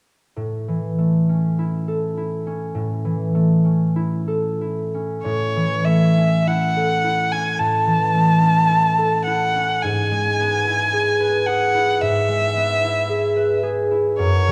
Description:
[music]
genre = classical, romantic duo for violin and harp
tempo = 44-56 BPM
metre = 4/4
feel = rubato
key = A major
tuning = A4 = 440 Hz
[part]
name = concert harp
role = accompaniment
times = 0.4-14.5 s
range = F#2 to B4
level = -22 LUFS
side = equal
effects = none
[part]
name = rich violin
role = melody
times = 5.2-14.5 s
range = C#5 to A5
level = -22 LUFS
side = equal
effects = none
[sound]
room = moderate concert hall reverb, RT60 1.8 s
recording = dark, warm production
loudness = -19 LUFS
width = mono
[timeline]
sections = 0.4-5.2 A section; 5.2-14.5 B section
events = none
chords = 0.4 A; 9.8 E/G#

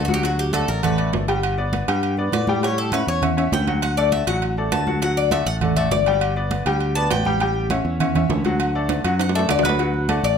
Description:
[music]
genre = latin, salsa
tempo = 201 BPM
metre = 4/4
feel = straight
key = D major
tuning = A4 = 438 Hz
[part]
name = Cuban tres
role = melody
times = 0.0-10.4 s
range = F#4 to A5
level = -23 LUFS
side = left 4 dB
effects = none
[part]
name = bright upright piano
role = accompaniment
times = 0.0-10.3 s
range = F#3 to G5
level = -24 LUFS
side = left 1 dB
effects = none
[part]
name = fingered electric bass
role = bass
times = 0.0-10.4 s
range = G1 to A2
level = -23 LUFS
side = equal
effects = none
[part]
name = congas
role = percussion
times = 0.1-10.4 s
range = none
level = -26 LUFS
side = right 2 dB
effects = none
[part]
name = agogo bells and timbales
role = percussion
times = 0.2-10.2 s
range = none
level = -26 LUFS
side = right 3 dB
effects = none
[sound]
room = light reverb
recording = none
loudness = -18 LUFS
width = side -7 dB against mid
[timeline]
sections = 0.0-10.4 A section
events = Cuban tres solo 0.0-10.4; drum fill 8.9-9.8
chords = 0.0 D; 1.4 Gadd9; 2.6 A7; 3.8 D; 6.2 Gadd9; 7.4 A7; 8.6 D

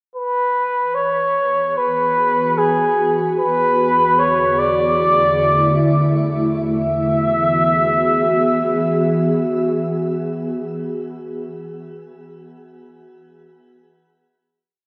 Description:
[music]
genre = ambient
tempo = free time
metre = none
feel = none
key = E mixolydian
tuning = A4 = 440 Hz
[part]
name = ethereal airy pad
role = sustained chords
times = 1.9-10.6 s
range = E2 to E5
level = -22 LUFS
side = equal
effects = ensemble chorus, built-in reverb, shimmer reverb
[part]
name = warm flugelhorn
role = melody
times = 0.2-10.3 s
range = G#4 to E5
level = -19 LUFS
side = equal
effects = shimmer reverb, analog delay
[sound]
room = wet spring reverb, RT60 2.5 s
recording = echo-heavy mix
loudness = -17 LUFS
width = mono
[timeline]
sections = 0.1-6.6 A section; 6.6-9.9 final chord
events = fade-in on ambient pad 0.1-6.6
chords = 0.1 Eadd9; 3.4 Dsus2/E; 6.6 Eadd9

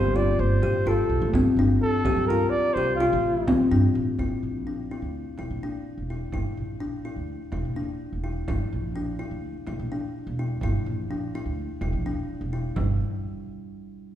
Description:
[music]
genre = contemporary instrumental, chamber music in an uneven meter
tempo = 252 BPM (eighths)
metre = 9/8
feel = straight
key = G dorian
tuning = A4 = 437 Hz
[part]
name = breathy flugelhorn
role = melody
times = 0.0-3.7 s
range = F4 to D5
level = -26 LUFS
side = right 2 dB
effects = none
[part]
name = kalimba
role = arpeggios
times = 0.0-13.0 s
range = G3 to G4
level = -27 LUFS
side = left 3 dB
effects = none
[part]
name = upright bass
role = bass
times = 0.0-13.0 s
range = E1 to G2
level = -28 LUFS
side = right 1 dB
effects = none
[part]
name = frame drum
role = percussion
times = 0.6-13.0 s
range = none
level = -33 LUFS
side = right 1 dB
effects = none
[sound]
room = wet recital hall reverb, RT60 1.7 s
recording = recorded in a church or concert hall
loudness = -23 LUFS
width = side -11 dB against mid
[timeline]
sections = 0.0-4.2 A section; 4.2-12.8 B section; 12.8-14.2 C section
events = none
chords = 0.0 Dm7/G; 4.2 Gm6 (rootless); 12.8 N.C.

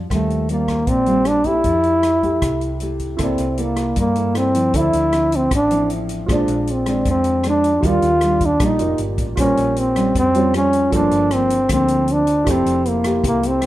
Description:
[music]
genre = bossa nova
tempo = 155 BPM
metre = 4/4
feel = straight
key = F major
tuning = A4 = 440 Hz
[part]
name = nylon-string guitar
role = accompaniment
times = 0.0-13.7 s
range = G2 to A4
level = -24 LUFS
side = equal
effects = none
[part]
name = hollow-body short-scale fingered electric bass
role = bass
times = 0.0-13.7 s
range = F1 to G2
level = -24 LUFS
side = equal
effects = none
[part]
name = mellow trombone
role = melody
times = 0.1-13.7 s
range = A3 to F4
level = -17 LUFS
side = equal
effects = none
[part]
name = vintage drum kit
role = drums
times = 0.1-13.7 s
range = hi-hat, kick drum, rim click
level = -25 LUFS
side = equal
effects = none
[part]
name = warm concert grand piano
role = accompaniment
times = 3.2-13.7 s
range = E4 to E5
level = -27 LUFS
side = right 4 dB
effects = none
[sound]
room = light reverb, studio reverb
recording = rough home demo mix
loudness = -15 LUFS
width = side -14 dB against mid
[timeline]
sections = 0.0-3.2 A section; 3.2-13.7 B section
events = none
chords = 0.1 Eb69; 1.6 Fmaj9; 3.2 C13; 4.7 Dm9; 6.3 Bb9; 7.8 Ebmaj9; 9.4 Bbm6; 10.9 Gm11; 12.5 Fmaj9

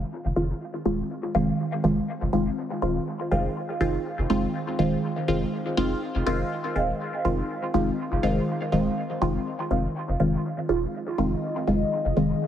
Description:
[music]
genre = dub techno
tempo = 122 BPM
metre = 4/4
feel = swing 55% on 16ths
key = F minor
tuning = A4 = 440 Hz
[part]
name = filtered dub chord stab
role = stabs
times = 0.0-12.5 s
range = Eb3 to F4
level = -24 LUFS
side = equal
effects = phaser, dub echo
[part]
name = soft dub sub bass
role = bass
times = 0.0-12.3 s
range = Eb1 to F1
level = -29 LUFS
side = equal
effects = none
[part]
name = deep dark ambient pad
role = sustained chords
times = 11.0-12.5 s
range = F4 to Eb5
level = -31 LUFS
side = left 4 dB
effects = chorus, built-in reverb
[sound]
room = moderate echo chamber reverb, RT60 1.6 s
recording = heavily compressed radio sound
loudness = -23 LUFS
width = side -10 dB against mid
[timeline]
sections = 0.0-10.0 A section; 10.0-12.5 A section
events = none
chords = 0.0 Fm7

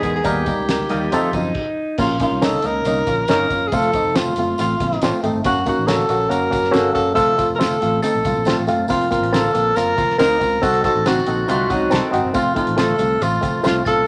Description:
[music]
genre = uptempo 1960s-style soul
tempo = 139 BPM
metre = 4/4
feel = straight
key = unclear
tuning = A4 = 440 Hz
[part]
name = breathy tenor saxophone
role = melody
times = 0.0-14.1 s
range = F4 to Bb4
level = -22 LUFS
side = equal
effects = none
[part]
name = glockenspiel with hard plastic mallets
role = second line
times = 0.0-1.6, 8.0-14.1 s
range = F6 to Bb6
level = -32 LUFS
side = equal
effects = none
[part]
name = barky reed electric piano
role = accompaniment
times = 0.0-14.0 s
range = F3 to A#4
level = -22 LUFS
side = equal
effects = overdrive, phaser
[part]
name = electric guitar through a small old amp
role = riff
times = 0.0-2.0, 11.5-12.3 s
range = Eb3 to G#4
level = -28 LUFS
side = equal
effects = none
[part]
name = fingered electric bass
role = bass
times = 0.0-14.0 s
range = F1 to F#2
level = -29 LUFS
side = equal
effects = none
[part]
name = cloth-damped thuddy drum kit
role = drums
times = 0.0-14.0 s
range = crash cymbal, hi-hat, kick drum, snare drum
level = -27 LUFS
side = equal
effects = none
[part]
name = congas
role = percussion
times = 0.0-14.0 s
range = none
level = -38 LUFS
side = equal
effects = none
[part]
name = tambourine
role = percussion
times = 0.0-14.0 s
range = none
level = -41 LUFS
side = equal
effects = none
[sound]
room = moderate large studio reverb, RT60 1.0 s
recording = none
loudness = -18 LUFS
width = mono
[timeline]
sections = 0.0-2.0 A section; 2.0-14.1 B section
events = stop 1.6-2.0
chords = 0.3 D#; 1.1 F7; 2.0 Bbm; 3.7 F; 5.5 Gb; 7.2 F; 8.9 Fsus4; 10.6 Cdim; 12.4 F

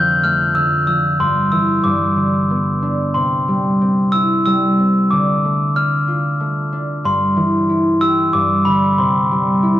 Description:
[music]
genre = children's music, lullaby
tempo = 93 BPM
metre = 3/4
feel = straight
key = C major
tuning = A4 = 437 Hz
[part]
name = glockenspiel with rubber mallets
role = melody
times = 0.0-9.8 s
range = B5 to G6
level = -17 LUFS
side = left 1 dB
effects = none
[part]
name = concert harp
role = accompaniment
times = 0.0-9.8 s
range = F2 to G4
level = -16 LUFS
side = equal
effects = none
[sound]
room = light reverb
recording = dry, close 1970s-style studio recording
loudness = -14 LUFS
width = side -13 dB against mid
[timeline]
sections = 0.0-9.8 A section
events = none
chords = 0.0 Dm/F; 1.2 C/G; 1.8 G; 3.2 C; 5.1 Dm; 7.0 C/G; 8.3 G5; 9.0 C

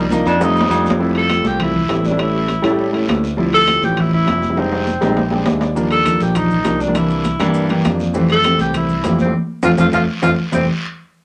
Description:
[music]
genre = Afro-Cuban jazz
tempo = 202 BPM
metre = 4/4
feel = straight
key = F major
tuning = A4 = 439 Hz
[part]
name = clear tenor saxophone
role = melody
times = 0.0-10.7 s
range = G3 to A4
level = -20 LUFS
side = equal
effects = none
[part]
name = dark concert grand piano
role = accompaniment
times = 0.0-10.7 s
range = E3 to G5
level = -21 LUFS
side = equal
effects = none
[part]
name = modern bright fingered electric bass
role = bass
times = 0.0-10.7 s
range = F1 to A2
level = -23 LUFS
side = equal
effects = none
[part]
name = agogo bells and timbales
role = percussion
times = 0.1-10.6 s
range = none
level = -25 LUFS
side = equal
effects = none
[part]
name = congas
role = percussion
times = 0.1-10.6 s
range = none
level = -26 LUFS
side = equal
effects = none
[part]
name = guiro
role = percussion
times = 0.1-10.6 s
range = none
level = -36 LUFS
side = equal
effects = none
[part]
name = maracas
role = percussion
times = 0.1-1.0, 5.8-10.6 s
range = none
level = -43 LUFS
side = equal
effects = none
[sound]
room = moderate studio reverb, RT60 0.6 s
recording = none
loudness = -16 LUFS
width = mono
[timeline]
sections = 0.0-1.0 A section; 1.0-10.5 B section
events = tenor saxophone solo 0.0-1.0; drum fill 0.4-1.0, 4.6-5.8, 9.6-10.5; grand piano fill 5.2-5.8, 7.5-8.1; band accent 9.3-10.5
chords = 0.4 F7; 1.0 Fmaj9; 2.2 A7; 3.4 Dm11; 4.6 Fm7; 5.2 Bb13; 5.8 Ebmaj9; 7.0 C7; 8.1 Fmaj9

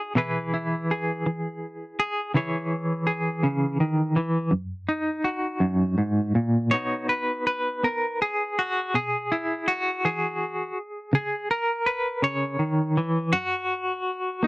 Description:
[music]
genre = folk, solo fingerstyle acoustic guitar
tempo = 55 BPM (dotted quarters)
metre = 6/8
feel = rubato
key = B major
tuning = A4 = 440 Hz
[part]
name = semi-hollow electric guitar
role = solo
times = 0.0-14.5 s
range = F#2 to C#5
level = -23 LUFS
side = equal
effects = tremolo
[sound]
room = light reverb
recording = dry, close 1970s-style studio recording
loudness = -23 LUFS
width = side -21 dB against mid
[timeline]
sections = 0.0-6.7 A section; 6.7-14.5 B section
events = none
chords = 0.2 E/B; 2.4 C#m; 4.5 F#6; 6.7 B; 8.9 Eadd9/B; 11.1 C#m; 13.3 N.C.

